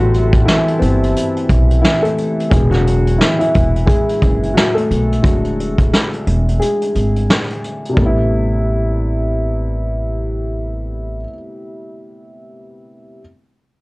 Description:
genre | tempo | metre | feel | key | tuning
lo-fi hip hop | 88 BPM | 4/4 | swing 60% on 16ths | A dorian | A4 = 436 Hz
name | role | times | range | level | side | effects
dark upright piano | accompaniment | 0.0-13.2 s | C3 to A4 | -18 LUFS | left 1 dB | cassette tape
warm analog pad | sustained chords | 0.0-2.5 s | A4 to C6 | -29 LUFS | right 1 dB | wide subtle chorus
upright bass | bass | 0.0-11.2 s | E1 to B1 | -17 LUFS | equal | transformer saturation
vintage brush drum kit | drums | 0.1-8.2 s | hi-hat, kick drum, snare drum | -16 LUFS | equal | none
room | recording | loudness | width
light reverb | dry, gritty hardware recording, cassette tape | -13 LUFS | side -23 dB against mid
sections
0.0-8.0 A section; 8.0-10.7 B section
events
upright piano solo 0.0-8.0; kick muted 6.6-8.0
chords
0.0 Am7; 2.5 E9; 8.0 Am7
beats
0.47 1.15 1.83 | 2.51 3.19 3.88 4.56 | 5.24 5.92 6.60 7.29 | 7.97 8.65 9.33 10.01

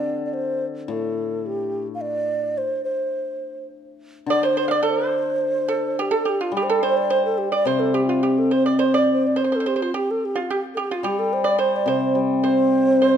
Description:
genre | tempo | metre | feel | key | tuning
chinese traditional, Chinese chamber ensemble | 107 BPM | 2/4 | rubato | C zhi mode | A4 = 445 Hz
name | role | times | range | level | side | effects
mellow hollow xiao | melody | 0.0-13.2 s | F4 to F5 | -23 LUFS | right 1 dB | none
hammered dulcimer | accompaniment | 0.0-13.2 s | A2 to C4 | -23 LUFS | left 2 dB | none
pipa | second line | 4.3-13.2 s | F4 to F5 | -24 LUFS | right 5 dB | none
room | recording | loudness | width
moderate scoring stage reverb, RT60 1.7 s | dark, warm production | -19 LUFS | side -8 dB against mid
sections
0.0-4.3 A section; 4.3-13.2 B section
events
none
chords
none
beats
0.34 | 0.90 1.47 | 2.02 2.57 | 3.13 3.70 | 4.29 4.86 | 5.42 5.98 | 6.53 7.08 | 7.65 8.22 | 8.79 9.37 | 9.94 10.49 | 11.04 11.60 | 12.16 12.73

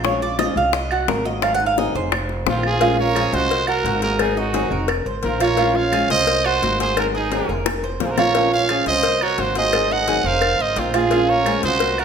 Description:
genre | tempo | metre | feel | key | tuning
latin, Cuban son and guajira | 173 BPM | 4/4 | straight | Bb minor | A4 = 440 Hz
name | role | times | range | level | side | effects
flamenco guitar | accompaniment | 0.0-11.9 s | C3 to Ab4 | -25 LUFS | left 3 dB | none
Cuban tres | arpeggios | 0.0-12.0 s | F4 to Gb5 | -23 LUFS | right 4 dB | none
upright bass | bass | 0.0-12.0 s | F1 to C2 | -26 LUFS | equal | none
bongos and cowbell | percussion | 0.0-12.0 s | none | -25 LUFS | left 8 dB | none
claves | percussion | 0.4-12.0 s | none | -30 LUFS | right 3 dB | none
growling trumpet | melody | 2.5-12.0 s | F4 to Gb5 | -21 LUFS | right 3 dB | none
breathy bright jazz flute | second line | 2.5-12.0 s | C4 to Eb5 | -27 LUFS | right 6 dB | none
room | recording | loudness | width
wet recital hall reverb, RT60 1.4 s | none | -17 LUFS | side -7 dB against mid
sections
0.0-2.8 A section; 2.8-12.0 B section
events
Cuban tres solo 0.0-2.8; drum fill 7.7-8.4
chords
0.0 Bbm7; 0.7 Cm7b5; 1.4 Ab7; 2.1 F7sus4; 2.8 Bbm7; 3.5 Cm7b5; 4.2 Ab7; 4.9 F7sus4; 5.6 Bbm7; 6.3 Cm7b5; 7.0 Ab7; 7.7 F7sus4; 8.4 Bbm7; 9.0 Cm7b5; 9.7 Ab7; 10.4 F7sus4; 11.1 Bbm7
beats
| 0.04 0.39 0.74 1.08 | 1.43 1.78 2.12 2.47 | 2.82 3.16 3.51 3.85 | 4.20 4.55 4.89 5.24 | 5.58 5.93 6.28 6.62 | 6.97 7.31 7.66 8.01 | 8.35 8.70 9.04 9.39 | 9.73 10.08 10.43 10.77 | 11.12 11.46 11.81

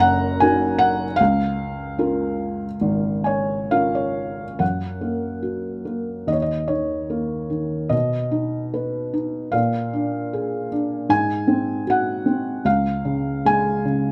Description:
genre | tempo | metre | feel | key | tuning
classical, lyrical solo piano | 64-79 BPM | 4/4 | rubato | F# major | A4 = 441 Hz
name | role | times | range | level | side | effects
felt-muted upright piano | solo | 0.0-14.1 s | F#1 to A#5 | -22 LUFS | equal | none
room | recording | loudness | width
light reverb | close, detailed microphones | -22 LUFS | mono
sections
0.0-4.6 A section; 4.6-14.1 B section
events
felt piano fill 2.8-4.6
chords
0.0 F#6; 1.2 C#6; 4.6 F#; 6.3 D#5; 7.9 B; 9.5 A#7; 11.1 G#7; 12.7 C#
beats
0.42 | 1.20 1.99 2.82 3.72 | 4.61 5.45 6.29 7.11 | 7.92 8.73 9.53 10.33 | 11.10 11.87 12.65 13.45

